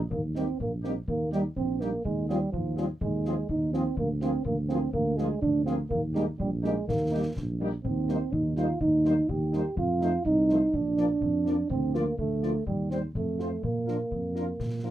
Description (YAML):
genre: military-style march for wind band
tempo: 124 BPM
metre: 2/4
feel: straight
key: Eb major, Bb major from 7.8 s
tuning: A4 = 440 Hz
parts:
  - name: mellow tuba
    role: bass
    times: 0.0-14.9 s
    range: Bb1 to Bb2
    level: -30 LUFS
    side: right 1 dB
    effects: none
  - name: warm euphonium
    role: second line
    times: 0.1-14.9 s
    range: F3 to G4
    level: -28 LUFS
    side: right 2 dB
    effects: none
  - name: concert bass drum and concert snare drum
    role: drums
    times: 0.1-14.9 s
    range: none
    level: -37 LUFS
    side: left 2 dB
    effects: none
  - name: clear trumpet section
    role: melody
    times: 0.4-14.9 s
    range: G4 to D5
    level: -48 LUFS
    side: left 4 dB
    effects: none
  - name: mellow French horn section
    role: accompaniment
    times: 0.4-14.9 s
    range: F3 to F4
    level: -32 LUFS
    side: left 2 dB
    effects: none
room: light reverb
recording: none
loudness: -26 LUFS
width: side -13 dB against mid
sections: 0.1-14.9 A section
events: none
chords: 0.1 Eb; 2.0 Fm7/Eb; 4.0 Bb7/D; 5.9 Eb; 7.8 Cm7/Eb; 9.8 F7; 10.7 Bb; 11.7 Bb/D; 12.7 Cm/Eb; 13.1 F; 13.6 Bb